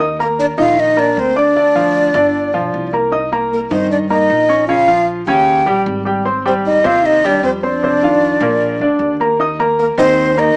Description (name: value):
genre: jazz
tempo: 153 BPM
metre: 4/4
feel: straight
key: Eb major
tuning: A4 = 437 Hz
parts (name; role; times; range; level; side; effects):
- warm concert grand piano; accompaniment; 0.0-10.6 s; Bb2 to Eb6; -15 LUFS; equal; none
- upright bass; bass; 0.0-10.5 s; G1 to G2; -25 LUFS; equal; none
- breathy hollow jazz flute; melody; 0.2-10.6 s; Bb4 to G5; -14 LUFS; equal; slapback echo
- mellow trombone; second line; 0.2-10.6 s; Bb3 to G4; -19 LUFS; equal; none
room: moderate studio reverb, RT60 0.9 s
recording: small speaker sound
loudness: -11 LUFS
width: side -38 dB against mid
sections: 0.0-10.6 A section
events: none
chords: 0.0 Eb5; 1.6 Dmadd11; 2.3 G7; 3.1 Cm7; 4.7 Bbm; 5.5 Eb7; 6.3 Abmaj7; 7.8 F5; 8.6 Bb; 9.4 Eb5